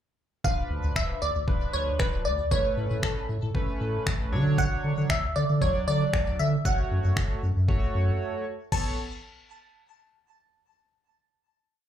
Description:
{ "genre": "dance-pop", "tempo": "116 BPM", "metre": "4/4", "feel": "straight", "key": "A major", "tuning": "A4 = 440 Hz", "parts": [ { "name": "glassy wavetable pluck", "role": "melody", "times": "0.4-9.0 s", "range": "A4 to A5", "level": "-30 LUFS", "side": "equal", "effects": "chorus, phaser, ping-pong delay, slapback echo" }, { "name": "chorused polysynth", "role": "accompaniment", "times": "0.4-9.0 s", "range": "F3 to D5", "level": "-34 LUFS", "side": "right 1 dB", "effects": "sidechain pumping, slapback echo" }, { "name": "saturated sub bass", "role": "bass", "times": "0.4-9.0 s", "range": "D1 to D3", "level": "-27 LUFS", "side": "equal", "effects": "sidechain pumping" }, { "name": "smooth R&B drum kit", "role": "drums", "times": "0.4-8.8 s", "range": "crash cymbal, finger snaps, kick drum", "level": "-28 LUFS", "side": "equal", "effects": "none" } ], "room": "digital ambience", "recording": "live gig heard through the venue's PA, club reverb", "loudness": "-24 LUFS", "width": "side -10 dB against mid", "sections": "0.4-8.7 verse; 8.7-10.8 final chord", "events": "break 8.2-8.7", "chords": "0.4 Dm6; 2.5 Aadd9; 4.3 Dmaj7; 6.7 F#m; 8.7 Aadd9", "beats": "| 0.45 0.96 1.48 2.00 | 2.51 3.03 3.55 4.07 | 4.58 5.10 5.62 6.13 | 6.65 7.17 7.69 8.20 | 8.72" }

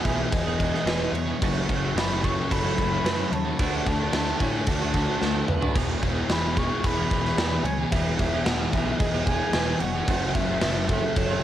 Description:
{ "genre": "rock, shoegaze and dream pop", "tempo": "111 BPM", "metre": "4/4", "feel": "straight", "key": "E major", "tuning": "A4 = 440 Hz", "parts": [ { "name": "breathy mellow concert flute", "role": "melody", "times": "0.0-11.4 s", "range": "C#5 to C#6", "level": "-31 LUFS", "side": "equal", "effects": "cassette tape, tape echo" }, { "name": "fingerpicked twelve-string acoustic guitar", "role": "arpeggios", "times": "0.0-11.4 s", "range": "F#4 to C#5", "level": "-35 LUFS", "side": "right 7 dB", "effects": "lush chorus, tape echo" }, { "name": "clean electric guitar", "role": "riff", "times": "0.0-11.4 s", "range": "E2 to G#4", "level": "-32 LUFS", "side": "right 8 dB", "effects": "reverse reverb" }, { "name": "thick fuzz guitar", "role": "riff", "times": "0.0-11.4 s", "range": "E2 to D4", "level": "-30 LUFS", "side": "left 7 dB", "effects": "distortion, analog chorus" }, { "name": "fuzz picked electric bass", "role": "bass", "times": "0.0-11.4 s", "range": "E1 to A2", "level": "-29 LUFS", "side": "equal", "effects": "overdrive" }, { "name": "gated 80s drum kit", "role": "drums", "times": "0.0-11.3 s", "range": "crash cymbal, kick drum, snare drum, splash cymbal, toms", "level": "-26 LUFS", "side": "equal", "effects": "cassette tape" } ], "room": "small room ambience", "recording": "home recording on cassette", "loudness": "-22 LUFS", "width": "side -11 dB against mid", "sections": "0.0-11.4 A section", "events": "drum fill 5.2-5.8", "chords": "0.0 Emaj7; 1.4 F#m7; 3.6 D; 5.8 E; 10.1 F#m7", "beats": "0.31 0.86 | 1.40 1.95 2.49 3.04 | 3.58 4.12 4.67 5.21 | 5.75 6.29 6.83 7.38 | 7.92 8.46 9.00 9.54 | 10.08 10.62 11.16" }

